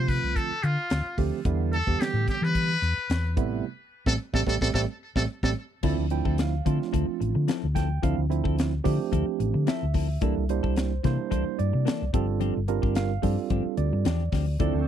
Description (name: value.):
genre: electric jazz fusion.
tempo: 110 BPM.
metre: 4/4.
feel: straight.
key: D minor from 5.8 s.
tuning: A4 = 440 Hz.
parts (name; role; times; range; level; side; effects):
trumpet with metal mute; melody; 0.0-5.5 s; F4 to C5; -30 LUFS; left 2 dB; tape echo.
barky tine electric piano; accompaniment; 0.0-14.9 s; C3 to G5; -30 LUFS; right 14 dB; overdrive, auto-pan.
hollow-body short-scale fingered electric bass; bass; 0.0-14.9 s; G1 to E3; -26 LUFS; left 1 dB; none.
crisp fusion drum kit; drums; 0.1-14.7 s; crash cymbal, hi-hat, kick drum, snare drum; -28 LUFS; left 1 dB; none.
clean electric guitar; stabs; 5.8-14.8 s; E3 to A4; -32 LUFS; left 19 dB; wide subtle chorus.
soft additive organ-like pad; sustained chords; 14.7-14.9 s; D3 to C4; -31 LUFS; right 1 dB; ensemble chorus, built-in reverb.
room: little or no reverb.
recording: dry, close 1970s-style studio recording.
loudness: -24 LUFS.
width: side -10 dB against mid.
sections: 0.0-5.8 A section; 5.8-14.9 B section.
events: drum fill 3.6-5.8; band accent 3.6-5.8.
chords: 0.0 Dm7; 1.5 Em7; 3.4 Am7; 5.8 Dm9; 10.2 C13; 12.1 G7sus4.